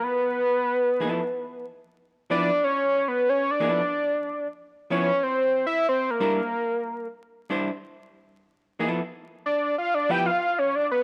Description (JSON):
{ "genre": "funk", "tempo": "92 BPM", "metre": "4/4", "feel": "straight", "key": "unclear", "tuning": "A4 = 440 Hz", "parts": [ { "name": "fat analog lead", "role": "melody", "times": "0.0-11.0 s", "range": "Bb4 to G5", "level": "-25 LUFS", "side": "equal", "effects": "none" }, { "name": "vintage hollow-body jazz guitar", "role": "accompaniment", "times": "1.0-10.3 s", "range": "F3 to C5", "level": "-31 LUFS", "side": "equal", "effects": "none" } ], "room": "light reverb", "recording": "vinyl crackle", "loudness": "-25 LUFS", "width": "mono", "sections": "0.0-11.0 A section", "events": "analog synth lead solo 0.0-11.0", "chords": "0.0 Fmaj7#11; 5.2 C9; 7.8 Fmaj7#11", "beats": "| 0.03 0.68 1.33 1.98 | 2.63 3.28 3.93 4.58 | 5.23 5.88 6.53 7.18 | 7.83 8.48 9.12 9.77 | 10.42" }